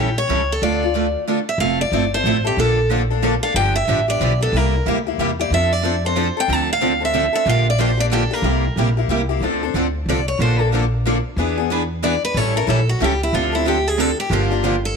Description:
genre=acoustic string swing (jazz manouche)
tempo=184 BPM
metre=3/4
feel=swing 61% on 8ths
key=F major, D minor from 9.4 s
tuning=A4 = 441 Hz
part: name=picked steel-string acoustic guitar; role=melody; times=0.0-15.0 s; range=E4 to A5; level=-21 LUFS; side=right 1 dB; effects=slapback echo
part: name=picked steel-string acoustic guitar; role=accompaniment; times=0.0-14.8 s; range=C3 to A4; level=-23 LUFS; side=left 13 dB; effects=none
part: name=picked steel-string acoustic guitar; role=accompaniment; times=0.0-14.8 s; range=C3 to B4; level=-24 LUFS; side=right 13 dB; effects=none
part: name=upright bass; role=bass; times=0.0-15.0 s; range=F1 to F2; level=-21 LUFS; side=equal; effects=none
room=light reverb, small room ambience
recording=1960s-style stereo with parts hard left and right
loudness=-16 LUFS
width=side -5 dB against mid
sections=0.0-1.6 A section; 1.6-9.4 B section; 9.4-15.0 C section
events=steel-string acoustic guitar solo 9.4-15.0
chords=0.0 A7; 0.6 Dm; 1.6 Fmaj7; 2.6 Bbmaj7; 3.5 G7; 4.5 C7; 5.5 F6; 6.5 Dm7; 7.5 Bb6; 8.4 C7; 9.4 Dm7; 10.4 Bbmaj7; 11.4 E7; 12.4 A7; 13.3 Dm7; 14.3 Gm7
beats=0.29 | 0.62 0.94 1.27 | 1.60 1.92 2.25 | 2.57 2.90 3.22 | 3.55 3.88 4.20 | 4.53 4.85 5.18 | 5.50 5.83 6.16 | 6.48 6.81 7.13 | 7.46 7.79 8.11 | 8.44 8.76 9.09 | 9.42 9.74 10.07 | 10.40 10.72 11.05 | 11.38 11.70 12.03 | 12.36 12.68 13.01 | 13.33 13.66 13.99 | 14.31 14.64 14.96

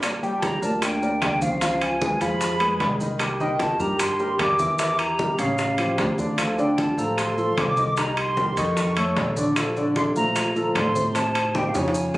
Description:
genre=Afro-Cuban jazz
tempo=151 BPM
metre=4/4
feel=straight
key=G minor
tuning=A4 = 439 Hz
part: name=warm concert grand piano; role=accompaniment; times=0.0-12.2 s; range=C3 to G5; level=-25 LUFS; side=equal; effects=none
part: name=upright bass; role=bass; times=0.0-12.2 s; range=G1 to Bb2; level=-30 LUFS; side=equal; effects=none
part: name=bongos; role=percussion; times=0.0-12.2 s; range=none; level=-30 LUFS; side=left 2 dB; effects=none
part: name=claves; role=percussion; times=0.0-12.2 s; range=none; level=-33 LUFS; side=equal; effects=none
part: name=congas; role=percussion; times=0.0-12.2 s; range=none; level=-32 LUFS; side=equal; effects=none
part: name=maracas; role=percussion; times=0.0-12.2 s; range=none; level=-38 LUFS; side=right 1 dB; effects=none
part: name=timbales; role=percussion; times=0.0-12.2 s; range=none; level=-30 LUFS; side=right 2 dB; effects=none
part: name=hollow concert flute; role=melody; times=0.4-12.2 s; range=F5 to D6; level=-26 LUFS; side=equal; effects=tape echo
part: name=vibraphone with medium hard mallets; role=second line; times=0.4-12.2 s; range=C#4 to Bb4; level=-32 LUFS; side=right 1 dB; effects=none
room=moderate studio ambience, RT60 0.5 s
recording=recorded on a phone in the room, club reverb, compression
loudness=-20 LUFS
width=side -17 dB against mid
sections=0.0-12.2 A section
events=drum fill 11.5-12.2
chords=0.0 Gm7; 1.6 C#9; 3.2 Cm9; 4.8 Edim; 5.6 Aaug7; 6.4 Dm7; 8.0 Cm7; 8.8 Faug7; 9.6 Bbmaj9; 11.2 Am7b5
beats=| 0.03 0.42 0.82 1.22 | 1.61 2.01 2.41 2.81 | 3.20 3.60 4.00 4.39 | 4.79 5.19 5.59 5.98 | 6.38 6.78 7.18 7.58 | 7.97 8.37 8.77 9.16 | 9.56 9.96 10.36 10.76 | 11.15 11.55 11.95

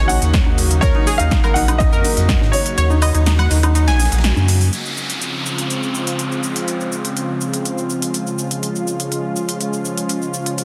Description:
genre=progressive house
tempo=123 BPM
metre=4/4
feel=straight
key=Db major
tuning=A4 = 440 Hz
part: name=clear baby grand piano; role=melody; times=0.0-4.2 s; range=Db5 to Gb5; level=-26 LUFS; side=equal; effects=sidechain pumping, dub echo
part: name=lush unison pad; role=sustained chords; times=0.0-10.6 s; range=Db3 to Gb4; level=-25 LUFS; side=equal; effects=chorus, sidechain pumping
part: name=analog pluck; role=arpeggios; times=0.0-4.6 s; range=Eb4 to Ab5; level=-25 LUFS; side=equal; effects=chorus, sidechain pumping, dub echo
part: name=saturated sub bass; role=bass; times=0.0-4.7 s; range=Bb1 to Ab2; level=-18 LUFS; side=equal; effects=sidechain pumping
part: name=big-room dance drum kit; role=drums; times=0.1-10.6 s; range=hi-hat, shaker, snare drum, woodblock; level=-26 LUFS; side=equal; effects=overdrive, sidechain pumping on hats, sidechain pumping on perc
part: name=modern studio drum kit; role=drums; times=0.1-4.6 s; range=ride cymbal, snare drum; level=-37 LUFS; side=equal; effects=none
part: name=congas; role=percussion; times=0.1-4.5 s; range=none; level=-32 LUFS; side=equal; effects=none
part: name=electronic kick drum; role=drums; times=0.3-2.4 s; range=none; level=-19 LUFS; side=equal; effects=overdrive
part: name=downlifter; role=sound effects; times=4.7-8.6 s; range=none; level=-29 LUFS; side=equal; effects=none
room=light reverb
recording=dense, heavily limited modern master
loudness=-18 LUFS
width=mono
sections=0.0-4.7 A section; 4.7-10.6 B section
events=kick drops out 2.8-4.7; band accent 4.2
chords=0.0 Ebm7; 4.7 Dbmaj7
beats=0.34 | 0.82 1.31 1.80 2.29 | 2.78 3.26 3.75 4.24 | 4.73 5.21 5.70 6.19 | 6.68 7.17 7.65 8.14 | 8.63 9.12 9.61 10.09 | 10.58

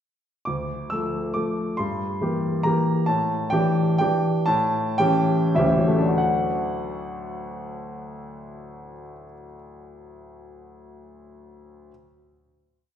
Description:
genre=classical, piano waltz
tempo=92-144 BPM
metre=3/4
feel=rubato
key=unclear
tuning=A4 = 440 Hz
part: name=warm grand piano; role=solo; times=0.5-11.9 s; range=D2 to E6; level=-22 LUFS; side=equal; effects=none
room=wet recital hall reverb, RT60 1.8 s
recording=heard from further back in the room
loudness=-20 LUFS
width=side -9 dB against mid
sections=0.5-6.2 A section; 6.2-9.8 final chord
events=slowing down 2.4-6.2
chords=0.5 Dm; 1.8 Edim/G; 3.1 A7sus4; 4.5 A7; 6.2 D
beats=| 0.47 0.91 1.35 | 1.79 2.21 2.65 | 3.08 3.52 4.00 | 4.48 4.99 5.57 | 6.19 6.79 7.40 | 8.00 8.60 9.21

